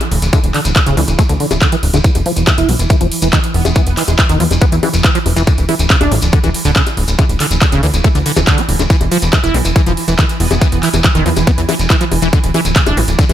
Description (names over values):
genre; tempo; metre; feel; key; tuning
psychedelic trance; 140 BPM; 4/4; straight; unclear; A4 = 440 Hz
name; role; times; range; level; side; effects
pulsing gated texture; sustained chords; 0.0-13.3 s; E3; -22 LUFS; right 4 dB; chorus, built-in reverb, sidechain pumping
big-room dance drum kit; drums; 0.0-13.3 s; bongos, handclaps, hi-hat; -18 LUFS; left 2 dB; overdrive
shekere; percussion; 0.0-13.3 s; none; -25 LUFS; left 2 dB; none
plucky analog bass; bass; 0.1-13.3 s; D1 to E2; -15 LUFS; equal; none
liquid acid bass; riff; 0.3-13.3 s; C#3 to E4; -18 LUFS; moving between left 4 dB and right 3 dB; chorus, auto-pan, sidechain pumping, dub echo
electronic kick drum; drums; 0.3-13.3 s; none; -12 LUFS; equal; overdrive
metallic wobble bass; second line; 3.5-4.1, 10.4-10.8 s; G#3 to B3; -27 LUFS; right 2 dB; ensemble chorus, vintage 12-bit sampler grit, sidechain pumping, high-pass filter, ping-pong delay
room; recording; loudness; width
little or no reverb; none; -10 LUFS; side -11 dB against mid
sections
0.0-13.3 A section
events
none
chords
0.0 D5; 2.0 E5; 5.5 D5; 8.9 E5; 12.3 D5